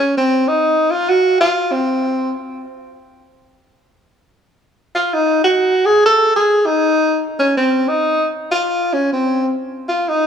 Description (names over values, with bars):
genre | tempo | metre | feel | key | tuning
jazz | free time | none | none | unclear | A4 = 440 Hz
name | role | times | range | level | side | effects
bright tenor saxophone | solo | 0.0-2.3, 4.9-10.3 s | C4 to A4 | -14 LUFS | equal | analog delay
room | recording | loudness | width
moderate spring reverb, RT60 2.4 s | echo-heavy mix, cassette tape, small room ambience | -14 LUFS | side -8 dB against mid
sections
0.0-10.3 A section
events
none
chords
none